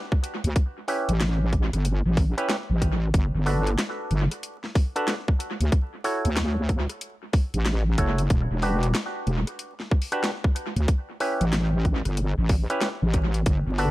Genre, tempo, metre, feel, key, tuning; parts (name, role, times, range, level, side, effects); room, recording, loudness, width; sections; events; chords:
glitch hop; 93 BPM; 4/4; swing 64% on 16ths; A4 = 440 Hz
drum and bass drum kit; drums; 0.1-13.9 s; hi-hat, rim click, snare drum; -32 LUFS; equal; overdrive, analog delay
electronic kick drum; drums; 0.1-13.6 s; -22 LUFS; equal; overdrive
wobble bass; bass; 0.4-13.9 s; E1 to D2; -23 LUFS; equal; chorus, tube saturation
auto-wah clav; stabs; 0.9-13.9 s; C#4 to C#5; -30 LUFS; right 1 dB; vintage 12-bit sampler grit, sidechain pumping, analog delay
little or no reverb; echo-heavy mix, vinyl crackle; -22 LUFS; side -17 dB against mid
0.0-13.9 A section
0.0 N.C.; 0.6 A7; 3.1 Gmaj9; 5.7 Dmaj7; 8.3 Em9; 10.9 A7